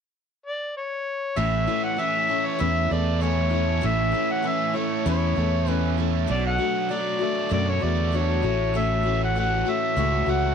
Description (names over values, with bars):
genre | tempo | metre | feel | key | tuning
rock | 98 BPM | 4/4 | straight | A major | A4 = 440 Hz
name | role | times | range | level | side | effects
mellow harmonica | melody | 0.5-10.5 s | C#5 to F#5 | -26 LUFS | left 1 dB | none
picked steel-string acoustic guitar | accompaniment | 1.4-10.5 s | A2 to F#4 | -28 LUFS | left 13 dB | none
biting overdriven guitar | riff | 1.4-10.5 s | A2 to F#4 | -29 LUFS | right 14 dB | none
fingered electric bass | bass | 1.4-10.5 s | A1 to F#2 | -24 LUFS | right 1 dB | none
room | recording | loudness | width
moderate spring reverb, RT60 1.4 s, studio ambience | 1960s-style stereo with parts hard left and right | -21 LUFS | side -7 dB against mid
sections
0.0-1.4 A section; 1.4-10.5 B section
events
none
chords
0.0 N.C.; 1.4 A; 6.3 Bm7; 8.4 F#m7/A